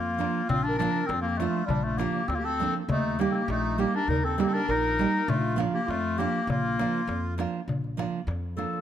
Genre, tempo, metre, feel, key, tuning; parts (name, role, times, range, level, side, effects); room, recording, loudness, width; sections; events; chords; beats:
balkan folk, Balkan wedding band; 100 BPM; 2/4; straight; Bb major; A4 = 439 Hz
bright clarinet; melody; 0.0-8.8 s; G3 to A4; -28 LUFS; left 4 dB
accordion; second line; 0.0-7.3 s; D4 to Bb4; -33 LUFS; right 4 dB
upright bass; bass; 0.0-8.6 s; Bb1 to F2; -32 LUFS; equal
nylon-string guitar; accompaniment; 0.2-8.8 s; F3 to G4; -30 LUFS; right 6 dB
darbuka; percussion; 0.2-8.8 s; -34 LUFS; left 2 dB
light reverb; close, detailed microphones; -25 LUFS; side -10 dB against mid
0.0-7.7 A section; 7.7-8.8 B section
clarinet solo 7.7-8.8
0.0 Bb; 2.9 Eb; 5.3 Bb
| 0.50 1.09 | 1.69 2.29 | 2.89 3.49 | 4.09 4.69 | 5.28 5.88 | 6.48 7.08 | 7.68 8.28